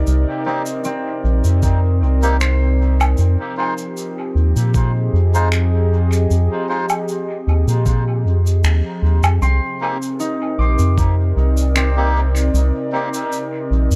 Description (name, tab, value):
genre	ambient dub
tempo	77 BPM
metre	4/4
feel	swing 53% on 16ths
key	C minor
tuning	A4 = 445 Hz
part	warbly tape-like pad	sustained chords	0.0-14.0 s	C3 to Eb5	-26 LUFS	equal	chorus, built-in reverb
part	concert harp	arpeggios	0.0-14.0 s	C4 to D6	-29 LUFS	equal	dub echo
part	round analog bass	bass	0.0-14.0 s	Bb1 to Bb2	-17 LUFS	equal	none
part	cabasa, finger snaps and woodblock	drums	0.1-14.0 s	none	-27 LUFS	equal	dub echo
part	melodica	stabs	0.5-13.1 s	Ab3 to C5	-29 LUFS	equal	dub echo
part	electronic kick drum	drums	1.6-11.1 s	none	-21 LUFS	equal	none
room	small room ambience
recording	echo-heavy mix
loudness	-17 LUFS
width	mono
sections	0.0-9.4 A section; 9.4-14.0 B section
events	band accent 8.6-9.0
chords	0.0 Cm7; 3.2 Fm7; 9.4 Cm7